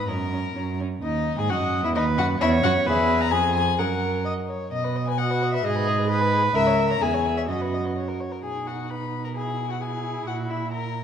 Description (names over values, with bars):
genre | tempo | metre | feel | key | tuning
quick classical-period movement for string quartet | 130 BPM | 2/4 | straight | B major | A4 = 439 Hz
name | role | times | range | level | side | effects
dark violin | melody | 0.0-11.0 s | D#5 to B5 | -28 LUFS | left 9 dB | none
dark violin | second line | 0.0-11.0 s | D#4 to E5 | -31 LUFS | left 2 dB | none
dark cello | bass | 0.0-11.0 s | C#2 to B2 | -26 LUFS | right 3 dB | none
warm viola | accompaniment | 0.1-11.0 s | C#4 to D#5 | -27 LUFS | right 2 dB | none
room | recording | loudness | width
wet concert hall reverb, RT60 1.7 s | dark, warm production | -22 LUFS | side -8 dB against mid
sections
0.0-1.0 A section; 1.0-8.4 B section; 8.4-11.0 C section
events
none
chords
0.1 F#; 1.0 D#madd11; 2.0 C#m11/D#; 2.9 E; 3.3 Fm; 3.8 F#; 4.7 B; 5.6 G#m; 6.5 C#m; 7.0 C#m/E; 7.5 B/F#; 8.4 B; 9.4 Eadd9/B; 10.3 F#7/A#